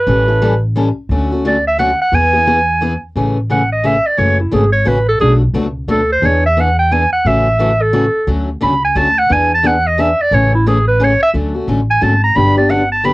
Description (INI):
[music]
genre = acoustic string swing (jazz manouche)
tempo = 176 BPM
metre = 3/4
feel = swing 61% on 8ths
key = A major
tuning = A4 = 440 Hz
[part]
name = bright clarinet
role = melody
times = 0.0-13.1 s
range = E4 to B5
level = -13 LUFS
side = right 1 dB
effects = none
[part]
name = picked steel-string acoustic guitar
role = accompaniment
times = 0.1-13.1 s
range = B2 to A4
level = -17 LUFS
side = left 2 dB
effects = cassette tape
[part]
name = upright bass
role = bass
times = 0.1-13.1 s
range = F#1 to E2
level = -16 LUFS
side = equal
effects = tube saturation
[sound]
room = light reverb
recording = home recording on cassette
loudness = -11 LUFS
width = side -20 dB against mid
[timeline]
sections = 0.0-3.2 A section; 3.2-11.3 B section; 11.3-13.1 B section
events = clarinet solo 3.2-13.1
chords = 0.1 A7; 1.1 Dmaj7; 2.1 E; 3.2 Amaj7; 4.2 F#m7; 5.2 Bm7; 6.2 E7; 7.3 A6; 8.3 Dmaj7; 9.3 E7; 10.3 Amaj7; 11.3 Dmaj7; 12.4 Gmaj7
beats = | 0.08 0.42 0.77 | 1.11 1.45 1.79 | 2.13 2.47 2.81 | 3.16 3.50 3.84 | 4.18 4.53 4.87 | 5.21 5.55 5.89 | 6.23 6.57 6.92 | 7.26 7.60 7.94 | 8.28 8.62 8.96 | 9.30 9.64 9.98 | 10.32 10.66 11.00 | 11.34 11.68 12.02 | 12.36 12.70 13.04